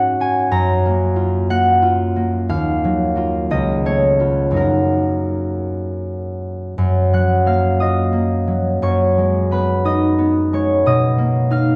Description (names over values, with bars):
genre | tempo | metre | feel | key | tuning
classical, solo harp piece | 51-63 BPM (dotted quarters) | 6/8 | rubato | F# major | A4 = 439 Hz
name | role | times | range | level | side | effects
concert harp | solo | 0.0-11.8 s | C#2 to F#6 | -17 LUFS | equal | none
room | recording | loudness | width
wet recital hall reverb, RT60 1.4 s | dark, warm production | -17 LUFS | mono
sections
0.0-6.8 A section; 6.8-11.8 A section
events
none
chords
0.0 G#7sus4; 0.5 F#maj9; 2.5 D#madd9; 3.5 C#aug7; 4.6 F#6; 6.8 F#maj7; 8.8 C#9sus4/F#; 10.9 Bmaj7